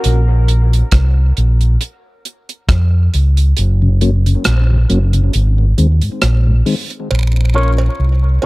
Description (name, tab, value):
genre	dub reggae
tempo	68 BPM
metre	4/4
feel	swing 56% on 16ths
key	Bb minor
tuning	A4 = 438 Hz
part	deep reggae drum kit	drums	0.0-7.1 s	hi-hat, kick drum, rim click	-18 LUFS	right 1 dB	none
part	fingered electric bass	bass	0.1-8.4 s	Gb1 to F2	-11 LUFS	equal	none
part	mellow tonewheel organ	accompaniment	3.8-6.8 s	Gb2 to Db4	-19 LUFS	left 2 dB	slow rotary speaker, dub echo
part	cowbell and jawbone-type rattle	percussion	7.1-8.5 s	none	-25 LUFS	right 6 dB	dub echo
part	electric guitar with an envelope filter	accompaniment	7.5-8.5 s	Db4 to Db5	-22 LUFS	equal	dub echo
part	warm upright piano	stabs	7.5-8.5 s	Db4 to Db5	-24 LUFS	left 2 dB	dub echo
room	studio reverb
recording	echo-heavy mix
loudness	-11 LUFS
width	side -21 dB against mid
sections	0.0-7.1 A section; 7.1-8.5 B section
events	break 0.0-7.1; kick muted 3.6-7.1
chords	0.0 Bbm; 3.6 Gb; 5.3 Ab5; 7.1 Bbm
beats	| 0.04 0.93 1.81 2.69 | 3.57 4.45 5.33 6.22 | 7.10 7.98